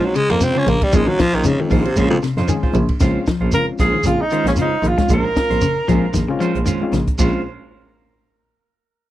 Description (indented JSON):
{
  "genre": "afrobeat",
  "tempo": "115 BPM",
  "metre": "4/4",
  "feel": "swing 54% on 16ths",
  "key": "Bb minor",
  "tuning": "A4 = 440 Hz",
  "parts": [
    { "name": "breathy baritone saxophone", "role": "melody", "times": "0.0-2.2 s", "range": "F2 to Db4", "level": "-18 LUFS", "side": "equal", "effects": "none" },
    { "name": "overdriven reed electric piano", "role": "accompaniment", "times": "0.0-7.4 s", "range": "Ab3 to Ab4", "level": "-25 LUFS", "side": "left 4 dB", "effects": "tremolo" },
    { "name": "clean electric guitar", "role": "stabs", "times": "0.0-7.4 s", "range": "Ab3 to C5", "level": "-26 LUFS", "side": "right 5 dB", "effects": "spring reverb" },
    { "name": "shekere", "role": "percussion", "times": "0.1-7.3 s", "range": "none", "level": "-24 LUFS", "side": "right 2 dB", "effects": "none" },
    { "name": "clean electric guitar", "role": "arpeggios", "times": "0.2-7.3 s", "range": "Bb2 to Ab3", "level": "-22 LUFS", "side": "left 5 dB", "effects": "spring reverb" },
    { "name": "compact cocktail drum kit", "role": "drums", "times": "0.2-7.3 s", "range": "crash cymbal, hi-hat, kick drum, ride cymbal, snare drum", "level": "-21 LUFS", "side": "equal", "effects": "none" },
    { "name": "rich double bass", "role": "bass", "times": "0.3-7.3 s", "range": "Bb1 to F2", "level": "-20 LUFS", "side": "equal", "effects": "none" },
    { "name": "warm tenor saxophone", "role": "melody", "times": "3.5-6.1 s", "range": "Db4 to Bb4", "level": "-20 LUFS", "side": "right 2 dB", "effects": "tape echo" }
  ],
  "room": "light reverb",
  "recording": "dry, close 1970s-style studio recording",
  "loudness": "-15 LUFS",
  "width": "side -14 dB against mid",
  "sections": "0.0-3.0 A section; 3.0-7.2 B section; 7.2-9.1 C section",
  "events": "baritone saxophone solo 0.0-3.0",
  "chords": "0.0 Bbm9"
}